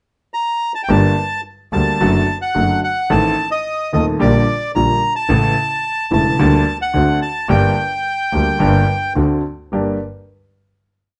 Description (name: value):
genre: tango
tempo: 109 BPM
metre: 4/4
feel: rubato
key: G harmonic minor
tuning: A4 = 440 Hz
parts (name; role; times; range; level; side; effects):
- bandoneon; melody; 0.3-9.1 s; D5 to Bb5; -21 LUFS; equal; none
- clear upright piano; accompaniment; 0.9-10.0 s; Eb1 to A4; -19 LUFS; equal; none
- bright double bass; bass; 0.9-10.0 s; E1 to Eb2; -22 LUFS; equal; none
room: moderate studio reverb, RT60 0.7 s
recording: nothing above 10.5 kHz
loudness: -17 LUFS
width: mono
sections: 0.0-0.9 pickup bar; 0.9-9.7 A section; 9.7-11.2 final chord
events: none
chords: 0.0 N.C.; 0.9 Gm; 2.0 D/F#; 3.1 Adim; 4.2 Gm/Bb; 5.3 A; 6.4 Gm/D; 6.9 D7; 7.5 Gm; 9.2 D7; 9.7 Gm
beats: 0.34 | 0.89 1.45 2.00 2.55 | 3.10 3.65 4.20 4.75 | 5.30 5.85 6.40 6.95 | 7.50 8.05 8.61 9.17 | 9.73